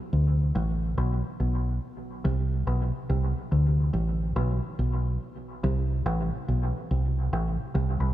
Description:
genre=reggae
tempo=71 BPM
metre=4/4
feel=swing 61% on 16ths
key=unclear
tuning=A4 = 440 Hz
part: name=deep dub fingered electric bass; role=solo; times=0.1-8.1 s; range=A1 to D2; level=-24 LUFS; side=equal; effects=dub echo
room=light reverb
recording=none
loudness=-25 LUFS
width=side -14 dB against mid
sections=0.0-8.1 A section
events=none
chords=none

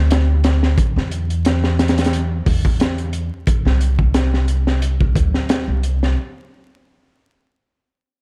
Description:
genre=trip hop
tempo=89 BPM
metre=4/4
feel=swing 55% on 16ths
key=unclear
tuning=A4 = 439 Hz
part: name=upright bass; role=bass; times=0.0-6.1 s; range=C2 to E2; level=-20 LUFS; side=equal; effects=none
part: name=crunchy breakbeat drum kit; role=drums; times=0.1-6.2 s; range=hi-hat, kick drum, snare drum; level=-21 LUFS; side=equal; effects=none
room=little or no reverb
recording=dark, warm production, vinyl crackle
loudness=-18 LUFS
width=mono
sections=0.0-8.2 A section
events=none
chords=none

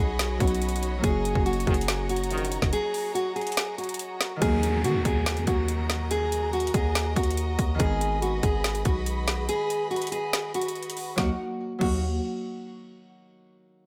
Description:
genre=hip hop, trap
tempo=142 BPM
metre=4/4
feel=half-time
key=Eb minor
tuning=A4 = 440 Hz
part: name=fingerpicked steel-string acoustic guitar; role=melody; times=0.0-12.0 s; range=F#4 to Ab4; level=-32 LUFS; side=equal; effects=delay
part: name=Celtic harp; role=accompaniment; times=0.0-12.0 s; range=Eb3 to Ab4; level=-36 LUFS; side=equal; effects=none
part: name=warm symphonic string section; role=sustained chords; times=0.0-11.4 s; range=Eb4 to Cb6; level=-39 LUFS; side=equal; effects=none
part: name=distorted 808-style bass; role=bass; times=0.0-12.2 s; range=Gb1 to Eb3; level=-31 LUFS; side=equal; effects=distortion
part: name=trap drum kit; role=drums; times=0.2-11.9 s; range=crash cymbal, hi-hat, kick drum, snare drum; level=-30 LUFS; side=equal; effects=none
part: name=bright brass ensemble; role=stabs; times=1.7-2.7 s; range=Bb1 to Eb3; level=-36 LUFS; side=equal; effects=none
part: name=downlifter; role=sound effects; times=4.4-7.8 s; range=none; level=-40 LUFS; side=equal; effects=none
room=small room ambience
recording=none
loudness=-26 LUFS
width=mono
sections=0.0-4.4 A section; 4.4-11.2 B section; 11.2-12.9 C section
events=break 2.7-4.4, 9.5-11.2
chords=0.0 Badd9; 1.0 Gb6; 4.4 Ebm; 7.8 Abm; 11.2 Ebm

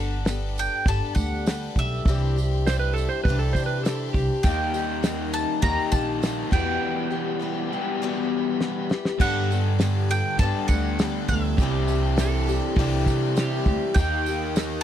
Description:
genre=folk rock and heartland rock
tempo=101 BPM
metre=4/4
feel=straight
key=G major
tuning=A4 = 440 Hz
part: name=bowl-back mandolin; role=melody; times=0.0-14.8 s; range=E5 to Bb5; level=-29 LUFS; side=right 1 dB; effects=none
part: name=picked twelve-string acoustic guitar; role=accompaniment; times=0.0-14.8 s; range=E2 to A4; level=-30 LUFS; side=left 8 dB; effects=none
part: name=tonewheel organ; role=sustained chords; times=0.0-14.8 s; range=Bb3 to Eb5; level=-37 LUFS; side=right 1 dB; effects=slow rotary speaker, overdrive
part: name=upright bass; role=bass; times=0.0-14.8 s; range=G1 to C3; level=-26 LUFS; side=right 1 dB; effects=none
part: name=damped 70s drum kit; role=drums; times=0.2-14.7 s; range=crash cymbal, hi-hat, kick drum, snare drum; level=-26 LUFS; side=equal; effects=none
part: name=tambourine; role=percussion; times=0.3-14.7 s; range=none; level=-41 LUFS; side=right 24 dB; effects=none
part: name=clean lap steel guitar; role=second line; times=2.7-4.4, 12.2-14.0 s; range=G4 to C5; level=-30 LUFS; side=right 8 dB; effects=none
part: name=crunchy overdriven guitar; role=riff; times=4.4-14.8 s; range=E2 to G4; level=-28 LUFS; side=equal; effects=none
room=little or no reverb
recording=dry, close 1970s-style studio recording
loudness=-21 LUFS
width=side -10 dB against mid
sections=0.0-9.2 A section; 9.2-14.8 A section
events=break 6.8-9.2; drum fill 8.6-9.2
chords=0.0 Gadd9; 2.1 Cadd9; 4.4 Eb; 6.5 Em; 9.2 Gadd9; 11.6 Cadd9; 14.0 Eb

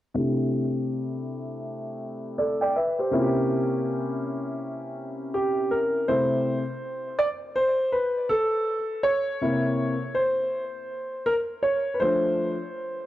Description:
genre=hip hop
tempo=81 BPM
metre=4/4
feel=swing 62% on 16ths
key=C major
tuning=A4 = 440 Hz
part: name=dark grand piano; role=solo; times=0.1-13.1 s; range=C3 to G5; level=-24 LUFS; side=equal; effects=low-pass filter, tape echo
room=light reverb, small room reverb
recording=none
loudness=-24 LUFS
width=side -14 dB against mid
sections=0.2-6.1 A section; 6.1-13.1 B section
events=filter sweep on grand piano 0.2-6.1; grand piano solo 6.1-13.1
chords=0.2 C69; 3.1 C7b9; 6.1 C6; 9.1 C7b9; 12.0 F6

